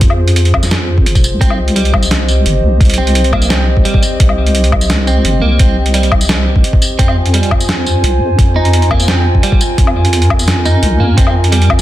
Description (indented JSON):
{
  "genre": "half-time drum and bass",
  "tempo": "172 BPM",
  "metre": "4/4",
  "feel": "half-time",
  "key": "C minor",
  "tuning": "A4 = 441 Hz",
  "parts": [
    { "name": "dark analog pad", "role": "sustained chords", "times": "0.0-11.8 s", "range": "C4 to Ab5", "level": "-19 LUFS", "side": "right 1 dB", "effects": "chorus, vintage 12-bit sampler grit, sidechain pumping" },
    { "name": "deep soft wobble bass", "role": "bass", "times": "0.0-11.8 s", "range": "F1 to F2", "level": "-12 LUFS", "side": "equal", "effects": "chorus" },
    { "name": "boom bap sampler-style drum kit", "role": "drums", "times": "0.0-11.8 s", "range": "hi-hat, snare drum, tambourine, woodblock", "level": "-17 LUFS", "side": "equal", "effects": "studio reverb" },
    { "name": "electronic kick drum", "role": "drums", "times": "0.0-11.8 s", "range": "none", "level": "-12 LUFS", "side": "equal", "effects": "studio reverb" },
    { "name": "clean electric guitar", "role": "arpeggios", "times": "1.4-11.7 s", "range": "G3 to Eb4", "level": "-20 LUFS", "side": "right 3 dB", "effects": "analog chorus, ping-pong delay" }
  ],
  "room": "light reverb, digital ambience",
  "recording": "dense, heavily limited modern master",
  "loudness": "-9 LUFS",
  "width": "side -14 dB against mid",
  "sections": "0.0-11.8 A section",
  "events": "none",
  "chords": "0.0 Fm; 1.4 Cm; 7.0 Fm"
}